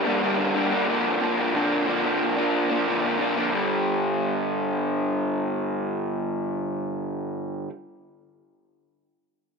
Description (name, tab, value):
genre	rock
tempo	90 BPM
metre	4/4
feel	straight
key	G minor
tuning	A4 = 440 Hz
part	raw garage guitar	riff	0.0-7.7 s	G2 to D4	-22 LUFS	equal	overdrive
room	moderate plate reverb, RT60 2.6 s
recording	none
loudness	-22 LUFS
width	side -4 dB against mid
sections	0.0-3.5 A section; 3.5-6.2 B section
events	none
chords	0.0 Gm; 0.9 Bb; 3.5 G5